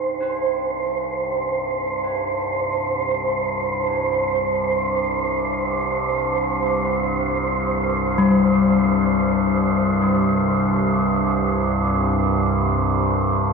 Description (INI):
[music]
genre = dark ambient drone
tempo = free time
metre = none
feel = none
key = C minor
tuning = A4 = 440 Hz
[part]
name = gamelan-type bronze metallophone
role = arpeggios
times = 0.0-13.5 s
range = G3 to Eb4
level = -21 LUFS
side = left 4 dB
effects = tape echo
[part]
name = overtone-sweeping drone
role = drone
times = 0.0-13.5 s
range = C2 to G2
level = -22 LUFS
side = right 1 dB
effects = chorus, built-in reverb
[part]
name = wind-like tuned noise texture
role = texture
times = 0.0-13.5 s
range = C5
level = -23 LUFS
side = right 3 dB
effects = built-in reverb
[sound]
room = wet cathedral reverb, RT60 5.7 s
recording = dark, warm production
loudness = -18 LUFS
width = side -4 dB against mid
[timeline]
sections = 0.0-13.5 A section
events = fade-in on synth drone 0.0-13.5; fade-out on synth texture 0.0-13.5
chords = 0.0 Cm